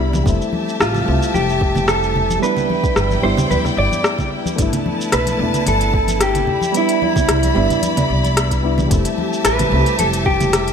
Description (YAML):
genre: sunset chillout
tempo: 111 BPM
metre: 4/4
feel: swing 53% on 16ths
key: unclear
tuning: A4 = 439 Hz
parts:
  - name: soft electric-piano-like synth keys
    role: accompaniment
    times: 0.0-10.7 s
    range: G3 to E4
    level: -22 LUFS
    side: moving between left 5 dB and right 7 dB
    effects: chorus, auto-pan, ping-pong delay
  - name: rich studio string section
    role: sustained chords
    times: 0.0-10.7 s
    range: E4 to B5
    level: -25 LUFS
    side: left 2 dB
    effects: none
  - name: upright bass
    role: bass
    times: 0.0-10.7 s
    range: E1 to D2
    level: -20 LUFS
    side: equal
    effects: none
  - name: smooth R&B drum kit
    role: drums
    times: 0.1-10.7 s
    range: congas, hi-hat, rim click, shaker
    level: -22 LUFS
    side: equal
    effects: overdrive
  - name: congas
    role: percussion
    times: 0.1-10.5 s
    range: none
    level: -26 LUFS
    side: left 2 dB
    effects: none
  - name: electronic kick drum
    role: drums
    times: 0.3-10.4 s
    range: none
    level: -20 LUFS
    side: equal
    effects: overdrive
  - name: mellow electric guitar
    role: melody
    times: 0.8-10.7 s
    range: E4 to D5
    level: -19 LUFS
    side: equal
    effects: vintage 12-bit sampler grit, ping-pong delay
room: moderate lush hall reverb, RT60 1.7 s, studio reverb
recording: bright 1980s-style digital production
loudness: -14 LUFS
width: side -7 dB against mid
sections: 0.0-10.7 A section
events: none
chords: 0.3 Fmaj9; 2.4 Em7/G; 4.6 G69; 6.5 Cmaj9; 8.9 Fmaj9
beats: | 0.26 0.80 1.34 1.89 | 2.42 2.97 3.51 4.05 | 4.59 5.13 5.67 6.21 | 6.75 7.29 7.83 8.37 | 8.91 9.45 9.99 10.53